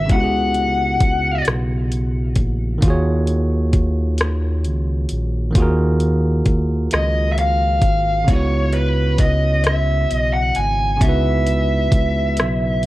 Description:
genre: slow six-eight R&B.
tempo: 44 BPM (dotted quarters).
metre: 6/8.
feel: straight.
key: C# dorian.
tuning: A4 = 438 Hz.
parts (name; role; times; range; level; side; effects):
bluesy overdriven lead guitar; melody; 0.0-1.4, 6.9-12.9 s; B4 to G#5; -20 LUFS; left 1 dB; distortion.
barky tine electric piano; accompaniment; 0.0-12.9 s; C#3 to C#5; -22 LUFS; right 2 dB; none.
smooth synth bass; bass; 0.0-12.9 s; G#1 to D#2; -20 LUFS; equal; transformer saturation.
smooth R&B drum kit; drums; 0.1-12.9 s; hi-hat, kick drum, rim click; -18 LUFS; equal; none.
room: little or no reverb.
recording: worn, warbling old tape, cassette tape, warbly pitch drift.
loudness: -16 LUFS.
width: side -17 dB against mid.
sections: 0.0-12.9 A section.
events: none.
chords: 0.0 C#m7; 2.8 D#m11; 8.3 C#m11.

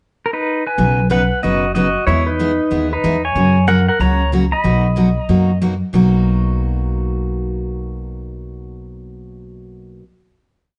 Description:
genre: country, western swing.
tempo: 186 BPM.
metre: 4/4.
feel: swing 63% on 8ths.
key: B major.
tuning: A4 = 440 Hz.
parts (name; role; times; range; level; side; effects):
pedal steel guitar; melody; 0.3-5.6 s; D#4 to B5; -20 LUFS; equal; none.
picked steel-string acoustic guitar; accompaniment; 0.8-10.0 s; B2 to B4; -22 LUFS; equal; none.
upright bass; bass; 0.8-10.0 s; F#1 to F#2; -21 LUFS; equal; none.
room: light reverb.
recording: nothing above 10.4 kHz.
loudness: -16 LUFS.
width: mono.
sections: 0.0-0.8 pickup bar; 0.8-5.9 A section; 5.9-8.5 final chord.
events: none.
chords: 0.0 B; 0.8 Badd9; 2.1 E; 3.4 F#; 4.6 Bmaj7.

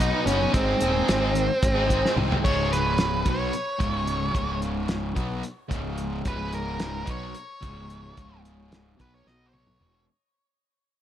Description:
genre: psychedelic rock.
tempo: 220 BPM (eighths).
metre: 7/8.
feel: straight.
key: unclear.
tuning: A4 = 440 Hz.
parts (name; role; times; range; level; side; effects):
octave-fuzz lead guitar; melody; 0.0-10.0 s; B#3 to D#5; -27 LUFS; right 1 dB; distortion, tape echo.
crunchy overdriven guitar; riff; 0.0-10.1 s; C#2 to B4; -29 LUFS; equal; harmonic tremolo.
fuzz fingered electric bass; bass; 0.0-10.1 s; C#1 to B#1; -30 LUFS; equal; overdrive.
cloth-damped thuddy drum kit; drums; 0.0-9.9 s; crash cymbal, hi-hat, kick drum, snare drum, toms; -28 LUFS; equal; none.
room: light reverb, small room ambience.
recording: none.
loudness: -23 LUFS.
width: side -11 dB against mid.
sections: 0.0-2.4 A section; 2.4-10.1 B section.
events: drum fill 2.0-2.4, 9.3-10.1; fade-out 2.4-10.1; lead electric guitar solo 2.4-10.1.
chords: 0.0 B; 0.5 G#; 2.4 C#5; 9.3 B5; 9.8 C#m7.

